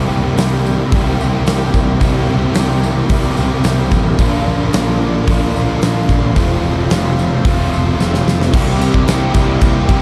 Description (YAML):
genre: rock, shoegaze and dream pop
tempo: 110 BPM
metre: 4/4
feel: straight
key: C mixolydian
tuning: A4 = 439 Hz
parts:
  - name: string machine, full ensemble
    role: sustained chords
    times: 0.0-10.0 s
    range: F4 to C6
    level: -31 LUFS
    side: equal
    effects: none
  - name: biting overdriven guitar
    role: riff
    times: 0.0-10.0 s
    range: F2 to G4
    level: -23 LUFS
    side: equal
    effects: subtle chorus
  - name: crunchy overdriven guitar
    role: riff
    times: 0.0-10.0 s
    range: F2 to G4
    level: -21 LUFS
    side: equal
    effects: reverse reverb
  - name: fuzz picked electric bass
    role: bass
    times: 0.0-10.0 s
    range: F1 to C2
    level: -20 LUFS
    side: equal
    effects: overdrive
  - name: tambourine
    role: percussion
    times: 0.1-9.8 s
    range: none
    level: -39 LUFS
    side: equal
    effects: none
  - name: huge arena drum kit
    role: drums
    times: 0.4-10.0 s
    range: crash cymbal, hi-hat, kick drum, ride cymbal, snare drum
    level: -19 LUFS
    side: equal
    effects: none
room: studio ambience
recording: dark, warm production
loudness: -14 LUFS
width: mono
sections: 0.0-8.5 A section; 8.5-10.0 B section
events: drum fill 8.0-8.5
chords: 0.0 C7; 4.2 Bbmaj9; 6.4 Fmaj7; 8.5 C7